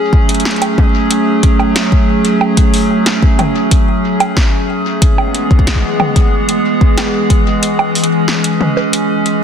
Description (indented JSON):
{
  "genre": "IDM",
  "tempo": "92 BPM",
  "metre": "4/4",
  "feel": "straight",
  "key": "unclear",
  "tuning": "A4 = 441 Hz",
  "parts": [
    { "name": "warbly tape-like pad", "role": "sustained chords", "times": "0.0-9.4 s", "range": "E3 to G#4", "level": "-13 LUFS", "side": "right 1 dB", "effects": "chorus, built-in reverb" },
    { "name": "electronic kick drum", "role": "drums", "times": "0.1-7.4 s", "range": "none", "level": "-11 LUFS", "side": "equal", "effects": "none" },
    { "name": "electro analog drum machine", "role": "drums", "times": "0.3-9.4 s", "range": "bongos, hi-hat, snare drum, toms", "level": "-17 LUFS", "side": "right 1 dB", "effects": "ping-pong delay" }
  ],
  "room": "light reverb, digital ambience",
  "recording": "dense, heavily limited modern master",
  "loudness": "-10 LUFS",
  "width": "side -8 dB against mid",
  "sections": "0.0-9.4 A section",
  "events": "kick drops out 7.6-9.4",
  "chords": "0.0 F#madd9; 5.0 E"
}